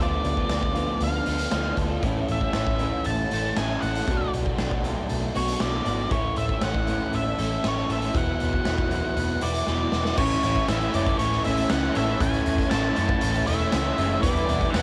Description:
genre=rock, shoegaze and dream pop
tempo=118 BPM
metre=4/4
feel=straight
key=A major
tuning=A4 = 440 Hz
part: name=octave-fuzz lead guitar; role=melody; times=0.0-14.8 s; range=C#5 to A5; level=-32 LUFS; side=equal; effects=distortion, cassette tape, analog delay
part: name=twelve-string electric guitar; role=arpeggios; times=0.0-14.8 s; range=E3 to A4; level=-39 LUFS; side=equal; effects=none
part: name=crunchy overdriven guitar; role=riff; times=0.0-14.8 s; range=A2 to F#4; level=-32 LUFS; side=equal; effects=ensemble chorus, cassette tape
part: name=electric guitar through a small old amp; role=riff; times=0.0-14.8 s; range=A2 to B4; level=-33 LUFS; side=equal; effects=reverse reverb, cassette tape
part: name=vintage muted picked electric bass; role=bass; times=0.0-14.8 s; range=E1 to F#2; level=-32 LUFS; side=equal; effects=none
part: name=raw garage drum kit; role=drums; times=0.2-14.8 s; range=crash cymbal, hi-hat, kick drum, snare drum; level=-30 LUFS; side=equal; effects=cassette tape
part: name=deep dark ambient pad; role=sustained chords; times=11.5-14.8 s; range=A4 to D6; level=-40 LUFS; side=equal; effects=none
part: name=cranked stack guitar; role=riff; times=10.2-14.8 s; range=A2 to E4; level=-35 LUFS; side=equal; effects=overdrive, cassette tape
room=light reverb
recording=home recording on cassette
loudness=-25 LUFS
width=mono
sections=0.0-10.2 A section; 10.2-14.8 B section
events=drum fill 9.7-10.2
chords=0.0 Dm6; 2.0 A; 4.1 Bm7; 6.1 A; 8.2 Esus2; 10.2 A; 14.2 Em7

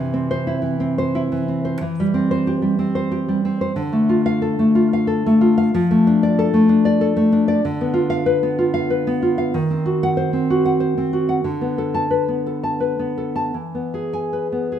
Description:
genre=romantic piece for solo classical guitar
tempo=76-98 BPM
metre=3/4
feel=rubato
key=unclear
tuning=A4 = 441 Hz
part: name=nylon-string guitar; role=solo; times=0.0-14.8 s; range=C3 to A5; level=-17 LUFS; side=left 1 dB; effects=none
room=moderate recital hall reverb, RT60 1.6 s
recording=minimal, uncompressed stereo recording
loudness=-16 LUFS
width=side -9 dB against mid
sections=0.0-14.8 A section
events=none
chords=0.0 C; 1.8 C/E; 3.8 Dm; 5.7 Dm/F; 7.6 Bdim/D; 9.6 D#m6; 11.5 Bm7/D; 13.6 E

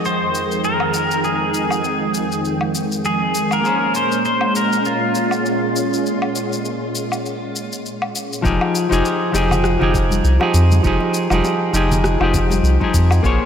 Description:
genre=sunset chillout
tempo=100 BPM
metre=4/4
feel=swing 57% on 16ths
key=F minor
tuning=A4 = 442 Hz
part: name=pedal steel guitar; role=melody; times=0.0-7.8 s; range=F4 to C5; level=-21 LUFS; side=left 1 dB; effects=wide subtle chorus, ping-pong delay
part: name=semi-hollow electric guitar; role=accompaniment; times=0.0-13.5 s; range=F3 to G5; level=-20 LUFS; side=moving between left 4 dB and right 3 dB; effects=auto-pan, ping-pong delay
part: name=soft string machine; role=sustained chords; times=0.0-8.4 s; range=F2 to C6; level=-21 LUFS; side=right 1 dB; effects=phaser, ensemble chorus
part: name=electronic shaker, woodblock and rim click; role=drums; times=0.0-13.4 s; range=none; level=-26 LUFS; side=left 2 dB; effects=none
part: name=round analog bass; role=bass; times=8.4-13.4 s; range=F1 to F2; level=-16 LUFS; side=equal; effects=none
part: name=electronic kick drum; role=drums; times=8.4-13.4 s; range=none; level=-22 LUFS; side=equal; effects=none
part: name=bongos and congas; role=percussion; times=8.9-13.2 s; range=none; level=-27 LUFS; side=left 3 dB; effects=none
room=wet lush hall reverb, RT60 2.6 s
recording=dreamy mix soaked in reverb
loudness=-16 LUFS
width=side -8 dB against mid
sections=0.0-8.4 A section; 8.4-13.5 B section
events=filter sweep on string machine 0.0-8.4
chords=0.0 Fm9; 3.6 Bbm9; 8.4 Fm9

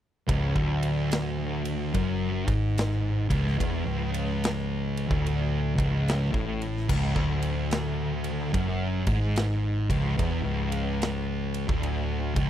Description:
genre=stoner and doom metal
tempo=73 BPM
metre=4/4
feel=swing 64% on 8ths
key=unclear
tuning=A4 = 440 Hz
part: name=thick fuzz guitar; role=riff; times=0.3-12.5 s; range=C#2 to A2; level=-27 LUFS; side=equal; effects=distortion
part: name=hollow-body short-scale picked electric bass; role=bass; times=0.3-12.5 s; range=C#1 to A1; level=-31 LUFS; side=equal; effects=overdrive
part: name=big rock drum kit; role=drums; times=0.3-12.5 s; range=crash cymbal, kick drum, ride cymbal, snare drum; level=-31 LUFS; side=equal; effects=none
room=studio ambience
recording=dry, close 1970s-style studio recording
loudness=-25 LUFS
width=side -11 dB against mid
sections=0.3-12.5 A section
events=none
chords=0.3 C#5

